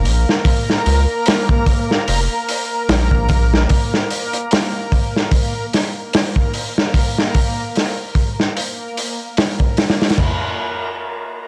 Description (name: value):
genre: trip hop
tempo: 74 BPM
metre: 4/4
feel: swing 57% on 16ths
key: unclear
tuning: A4 = 441 Hz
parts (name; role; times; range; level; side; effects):
- round analog bass; bass; 0.0-3.7 s; F1 to Db2; -18 LUFS; equal; none
- backwards swelling texture; texture; 0.0-10.2 s; Bb3 to Bb4; -26 LUFS; equal; built-in reverb
- crunchy breakbeat drum kit; drums; 0.1-10.4 s; crash cymbal, hi-hat, kick drum, snare drum, toms; -19 LUFS; equal; none
room: little or no reverb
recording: dry, gritty hardware recording, transformer saturation, cassette tape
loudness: -18 LUFS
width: mono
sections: 0.0-10.2 A section; 10.2-11.5 B section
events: none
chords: none